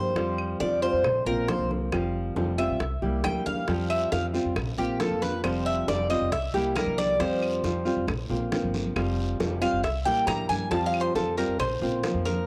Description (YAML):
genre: latin, Cuban son and guajira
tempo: 136 BPM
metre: 4/4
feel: straight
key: unclear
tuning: A4 = 440 Hz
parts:
  - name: nylon-string guitar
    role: accompaniment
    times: 0.0-12.5 s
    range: F3 to G4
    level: -31 LUFS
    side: equal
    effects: none
  - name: Cuban tres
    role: arpeggios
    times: 0.0-12.5 s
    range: G4 to Bb5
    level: -30 LUFS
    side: equal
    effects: none
  - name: upright bass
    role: bass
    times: 0.0-12.5 s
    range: F1 to Bb2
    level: -34 LUFS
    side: equal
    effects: none
  - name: bongos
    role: percussion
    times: 0.2-12.5 s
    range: none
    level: -38 LUFS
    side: equal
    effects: none
  - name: congas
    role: percussion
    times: 0.2-12.5 s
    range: none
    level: -38 LUFS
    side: equal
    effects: none
  - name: claves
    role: percussion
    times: 0.4-11.8 s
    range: none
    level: -42 LUFS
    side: equal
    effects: none
  - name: guiro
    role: percussion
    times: 3.7-12.5 s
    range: none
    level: -46 LUFS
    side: equal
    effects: none
room: light reverb, studio reverb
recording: home recording on cassette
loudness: -27 LUFS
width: mono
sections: 0.0-12.5 A section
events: Cuban tres solo 0.0-12.5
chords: 0.2 Fsus2; 1.0 Bbsus2; 1.9 Fsus2; 2.8 C7; 3.7 Fsus2; 4.6 Bbsus2; 5.4 Fsus2; 6.3 C7; 7.2 Fsus2; 8.1 Bbsus2; 9.0 Fsus2; 9.8 C7; 10.7 Fsus2; 11.6 Bbsus2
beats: | 0.16 0.60 1.04 1.48 | 1.92 2.36 2.80 3.24 | 3.68 4.12 4.56 5.00 | 5.44 5.88 6.32 6.76 | 7.20 7.64 8.08 8.52 | 8.96 9.40 9.84 10.28 | 10.72 11.16 11.60 12.04